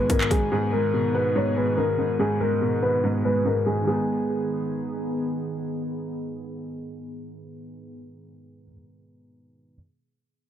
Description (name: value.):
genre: hip hop.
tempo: 143 BPM.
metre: 4/4.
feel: half-time.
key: G# minor.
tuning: A4 = 440 Hz.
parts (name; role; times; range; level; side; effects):
dark concert grand piano; melody; 0.0-5.1 s; G#4 to C#5; -25 LUFS; left 2 dB; low-pass filter, tape echo.
felt-muted upright piano; accompaniment; 0.0-9.8 s; G#2 to D#4; -27 LUFS; right 2 dB; low-pass filter.
airy breathy pad; sustained chords; 0.0-8.0 s; D#3 to G#4; -31 LUFS; equal; chorus, low-pass filter.
room: moderate booth ambience, RT60 0.2 s.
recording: none.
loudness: -22 LUFS.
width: side -10 dB against mid.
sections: 0.0-3.9 A section; 3.9-7.2 B section.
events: filter sweep 0.0-3.9.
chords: 0.0 G#m.